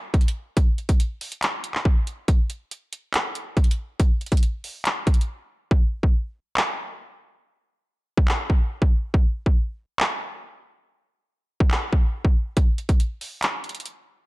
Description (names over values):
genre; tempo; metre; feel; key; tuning
hip hop; 140 BPM; 4/4; half-time; none; none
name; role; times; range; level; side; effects
trap drum kit; drums; 0.1-14.0 s; handclaps, hi-hat, kick drum; -20 LUFS; equal; none
room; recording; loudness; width
little or no reverb; dark, warm production; -21 LUFS; side -21 dB against mid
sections
0.0-5.7 A section; 5.7-14.3 B section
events
break 5.3-5.7; hi-hats muted 5.7-12.6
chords
none